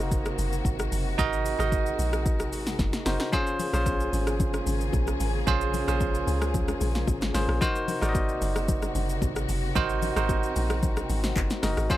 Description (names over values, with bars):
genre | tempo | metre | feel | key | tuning
amapiano | 112 BPM | 4/4 | straight | unclear | A4 = 443 Hz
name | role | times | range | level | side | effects
bell-like tine electric piano | accompaniment | 0.0-12.0 s | Db4 to Eb5 | -29 LUFS | moving between left 1 dB and right 8 dB | auto-pan
warm studio string section | sustained chords | 0.0-12.0 s | C3 to Ab4 | -35 LUFS | left 4 dB | none
deep log drum bass | bass | 0.0-11.9 s | Gb1 to Db2 | -29 LUFS | equal | none
deep house drum kit | drums | 0.1-12.0 s | handclaps, hi-hat, kick drum, rim click, shaker, snare drum | -29 LUFS | equal | overdrive
congas and bongos | percussion | 3.3-12.0 s | none | -37 LUFS | left 8 dB | none
room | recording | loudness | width
little or no reverb | none | -24 LUFS | side -14 dB against mid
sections
0.0-12.0 A section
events
drum fill 2.8-3.3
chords
0.0 Ab9; 3.3 Bbm7; 7.6 Ab9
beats
0.11 0.65 | 1.19 1.72 2.26 2.79 | 3.33 3.86 4.40 4.94 | 5.47 6.01 6.54 7.08 | 7.61 8.15 8.69 9.22 | 9.76 10.29 10.83 11.36 | 11.90